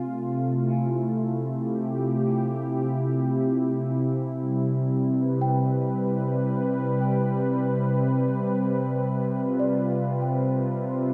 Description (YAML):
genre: ambient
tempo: free time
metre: none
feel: none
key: C major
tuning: A4 = 440 Hz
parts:
  - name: warm analog pad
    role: sustained chords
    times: 0.0-11.1 s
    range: C3 to B4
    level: -27 LUFS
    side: equal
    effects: chorus
  - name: large celesta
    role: arpeggios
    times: 0.0-11.1 s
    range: D5 to G5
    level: -39 LUFS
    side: equal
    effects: dub echo
  - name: analog drone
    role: drone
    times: 0.0-11.1 s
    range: C3 to C4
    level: -30 LUFS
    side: equal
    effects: chorus
room: wet echo chamber reverb, RT60 2.1 s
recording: echo-heavy mix, cassette tape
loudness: -25 LUFS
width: mono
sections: 0.0-11.1 A section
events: none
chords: 0.0 Fmaj9/C; 3.8 Cmaj7; 8.0 G7/C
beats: free time